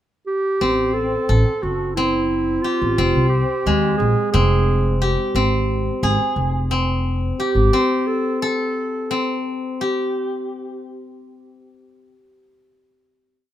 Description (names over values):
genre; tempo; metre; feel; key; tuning
contemporary instrumental, chamber music in an uneven meter; 177 BPM (eighths); 7/8; straight; unclear; A4 = 435 Hz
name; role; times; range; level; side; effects
mellow clarinet; melody; 0.3-9.4 s; E4 to A4; -21 LUFS; right 2 dB; none
steel-string zither; arpeggios; 0.6-12.2 s; Ab3 to A4; -22 LUFS; left 2 dB; none
upright bass; bass; 0.6-7.7 s; F1 to Eb2; -20 LUFS; equal; none
room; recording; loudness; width
light reverb; none; -17 LUFS; side -12 dB against mid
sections
0.0-0.6 pickup bar; 0.6-10.2 A section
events
slowing down 5.3-10.2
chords
0.0 N.C.; 0.6 Am; 3.0 Fm; 5.3 G#; 7.7 Am